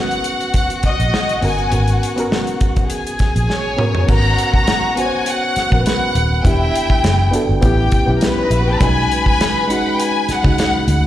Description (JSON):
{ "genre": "lush 1970s-style soul", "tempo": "102 BPM", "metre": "4/4", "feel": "swing 54% on 16ths", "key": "unclear", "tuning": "A4 = 440 Hz", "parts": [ { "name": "warm studio violin section", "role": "melody", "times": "0.0-11.1 s", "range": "A#4 to A#5", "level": "-20 LUFS", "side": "left 1 dB", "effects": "slapback echo" }, { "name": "warm chamber string section", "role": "second line", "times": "0.0-10.8 s", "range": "B3 to B5", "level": "-23 LUFS", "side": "left 1 dB", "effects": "slapback echo" }, { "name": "reed electric piano", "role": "accompaniment", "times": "0.0-11.1 s", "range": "G#3 to C#5", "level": "-22 LUFS", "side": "equal", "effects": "slapback echo" }, { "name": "modern studio drum kit", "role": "drums", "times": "0.1-11.0 s", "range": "crash cymbal, hi-hat, kick drum, snare drum, toms", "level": "-18 LUFS", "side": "equal", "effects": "none" }, { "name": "vintage muted fingered electric bass", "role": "bass", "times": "0.8-11.1 s", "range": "D#1 to D2", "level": "-16 LUFS", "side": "equal", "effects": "none" }, { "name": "glockenspiel with rubber mallets", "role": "texture", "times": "4.4-11.1 s", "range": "A#5 to C#6", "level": "-34 LUFS", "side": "right 6 dB", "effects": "none" } ], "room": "little or no reverb", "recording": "live gig heard through the venue's PA, recital hall reverb", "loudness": "-14 LUFS", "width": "side -12 dB against mid", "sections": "0.0-4.1 A section; 4.1-11.1 B section", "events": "drum fill 3.5-4.1", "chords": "0.0 G#m11; 4.1 G#m11 (rootless); 6.4 Em7; 7.6 A9; 8.8 B69", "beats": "0.54 1.13 | 1.72 2.31 2.90 3.49 | 4.08 4.67 5.26 5.86 | 6.45 7.04 7.63 8.22 | 8.81 9.40 9.99 10.58" }